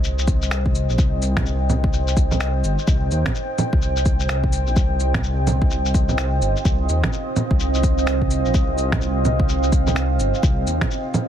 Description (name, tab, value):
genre	future garage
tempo	127 BPM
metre	4/4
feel	swing 61% on 16ths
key	unclear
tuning	A4 = 444 Hz
part	deep dark ambient pad	sustained chords	0.0-11.3 s	C4 to G5	-24 LUFS	right 2 dB	chorus, built-in reverb, sidechain pumping
part	dark detuned saw bass	bass	0.0-10.8 s	G1 to Eb2	-21 LUFS	equal	tube saturation, sidechain pumping
part	electronic shaker, cabasa, finger snaps and bongos	drums	0.0-11.3 s	none	-26 LUFS	right 2 dB	soft clipping on snare
part	electronic kick drum	drums	0.3-10.9 s	none	-20 LUFS	equal	overdrive
room	little or no reverb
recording	dense, heavily limited modern master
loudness	-17 LUFS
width	side -10 dB against mid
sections	0.0-11.3 A section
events	none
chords	0.0 Cm; 4.8 Ebadd9